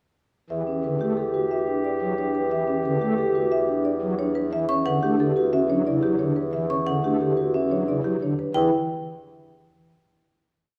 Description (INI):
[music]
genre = classical, minimalist pattern music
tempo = 179 BPM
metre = 6/4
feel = straight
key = E dorian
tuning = A4 = 438 Hz
[part]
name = marimba with medium mallets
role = melody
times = 0.5-8.7 s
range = G4 to E5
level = -32 LUFS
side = equal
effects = none
[part]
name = dark soprano saxophone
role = second line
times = 0.5-4.3 s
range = G4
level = -33 LUFS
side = equal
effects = none
[part]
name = pipe organ, strings celeste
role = accompaniment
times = 0.5-8.7 s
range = C#3 to A3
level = -32 LUFS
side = equal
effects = none
[part]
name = warm bassoon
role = bass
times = 0.5-8.7 s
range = E2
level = -30 LUFS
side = equal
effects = none
[part]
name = vibraphone with soft mallets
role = arpeggios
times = 0.7-8.7 s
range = C#4 to G4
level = -28 LUFS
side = equal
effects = none
[part]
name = xylophone with plastic mallets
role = arpeggios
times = 4.7-8.7 s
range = F#5 to C#6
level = -31 LUFS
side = equal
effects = none
[sound]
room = wet recital hall reverb, RT60 1.7 s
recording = none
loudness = -24 LUFS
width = mono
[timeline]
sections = 0.5-8.5 A section; 8.5-10.6 final chord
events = none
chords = 0.5 Em9; 8.5 Em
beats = | 0.50 0.84 1.17 1.51 1.84 2.18 | 2.51 2.85 3.18 3.52 3.85 4.19 | 4.52 4.86 5.20 5.53 5.87 6.20 | 6.54 6.87 7.21 7.54 7.88 8.21 | 8.55